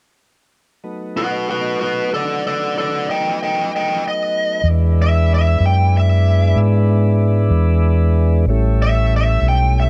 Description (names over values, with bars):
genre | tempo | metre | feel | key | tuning
slow blues | 63 BPM (dotted quarters) | 12/8 | straight | unclear | A4 = 440 Hz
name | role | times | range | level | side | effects
tonewheel organ | sustained chords | 0.8-9.9 s | F#3 to E4 | -26 LUFS | equal | slow rotary speaker, plate reverb
smooth overdriven lead guitar | melody | 1.2-9.9 s | F#4 to G5 | -22 LUFS | equal | plate reverb
fingered electric bass | bass | 4.6-9.9 s | A1 to G#2 | -16 LUFS | equal | none
room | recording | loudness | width
light reverb | dark, warm production | -17 LUFS | mono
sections
0.8-4.7 A section; 4.7-9.9 B section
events
lead electric guitar solo 4.7-9.9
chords
0.8 B7; 4.7 E7; 8.5 A7